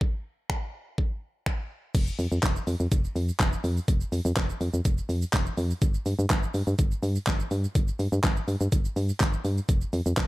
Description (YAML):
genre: dance-pop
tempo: 124 BPM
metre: 4/4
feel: straight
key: unclear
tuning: A4 = 440 Hz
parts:
  - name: pop drum kit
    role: drums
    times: 0.0-10.3 s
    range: crash cymbal, finger snaps, handclaps, hi-hat, kick drum, shaker, snare drum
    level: -26 LUFS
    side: equal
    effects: overdrive
  - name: solid FM bass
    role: bass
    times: 1.9-10.3 s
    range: F1 to G2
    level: -27 LUFS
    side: equal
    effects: sidechain pumping
room: little or no reverb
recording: none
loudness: -24 LUFS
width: side -18 dB against mid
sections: 0.0-1.9 A section; 1.9-10.3 B section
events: none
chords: none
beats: | 0.01 0.49 0.98 1.46 | 1.95 2.43 2.91 3.40 | 3.88 4.37 4.85 5.33 | 5.82 6.30 6.79 7.27 | 7.75 8.24 8.72 9.20 | 9.69 10.17